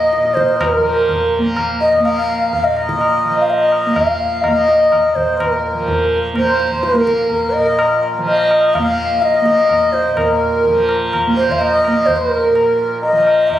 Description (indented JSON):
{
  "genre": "indian classical, Hindustani",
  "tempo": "126 BPM",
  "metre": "5/4",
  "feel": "straight",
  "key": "unclear",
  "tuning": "A4 = 437 Hz",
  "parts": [
    { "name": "breathy reedy bansuri", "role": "melody", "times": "0.0-13.6 s", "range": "Bb4 to F5", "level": "-15 LUFS", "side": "left 1 dB", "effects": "none" },
    { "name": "pedal harmonium", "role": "second line", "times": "0.0-13.0 s", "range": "Bb4 to F5", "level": "-19 LUFS", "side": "right 1 dB", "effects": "none" },
    { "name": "tanpura", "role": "drone", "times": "0.0-13.6 s", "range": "Bb2 to Bb3", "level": "-21 LUFS", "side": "right 1 dB", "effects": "none" },
    { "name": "tabla", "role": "percussion", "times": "0.1-13.6 s", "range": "none", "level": "-22 LUFS", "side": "left 2 dB", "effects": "none" }
  ],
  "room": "wet recital hall reverb, RT60 1.6 s",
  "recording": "recorded on a phone in the room, club reverb",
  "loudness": "-12 LUFS",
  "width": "side -12 dB against mid",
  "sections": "0.0-13.6 A section",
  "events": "none",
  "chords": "none",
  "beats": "0.13 | 0.60 1.08 1.56 2.04 2.52 | 3.00 3.48 3.96 4.44 4.92 | 5.39 5.87 6.35 6.83 7.30 | 7.78 8.26 8.74 9.21 9.69 | 10.17 10.64 11.12 11.60 12.07 | 12.55 13.02 13.50"
}